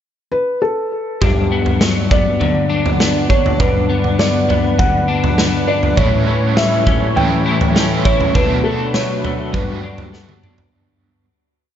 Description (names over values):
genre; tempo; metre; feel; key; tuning
dream pop; 101 BPM; 4/4; straight; G lydian; A4 = 441 Hz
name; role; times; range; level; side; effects
felt-muted upright piano; melody; 0.3-10.1 s; G4 to G5; -20 LUFS; equal; digital delay
warm analog pad; sustained chords; 1.2-10.7 s; G3 to F#5; -22 LUFS; right 2 dB; chorus
electric guitar at the edge of break-up; arpeggios; 1.2-11.3 s; G2 to E4; -18 LUFS; left 4 dB; ensemble chorus, digital delay
raw garage drum kit; drums; 1.2-10.7 s; kick drum, snare drum, toms; -17 LUFS; right 1 dB; none
crunchy overdriven guitar; accompaniment; 6.0-11.2 s; A2 to A4; -24 LUFS; right 6 dB; tremolo, lush chorus
room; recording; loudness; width
light reverb, studio reverb; nothing above 7.8 kHz; -13 LUFS; side -10 dB against mid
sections
0.0-1.2 pickup bar; 1.2-10.7 A section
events
fade-out 8.3-10.7; drum fill 10.1-10.7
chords
0.0 N.C.; 1.2 Gmaj7; 6.0 A7; 8.3 Bm7; 9.5 Gmaj7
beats
0.03 0.62 | 1.22 1.81 2.41 3.00 | 3.60 4.19 4.78 5.38 | 5.97 6.57 7.16 7.75 | 8.35 8.94 9.54 10.13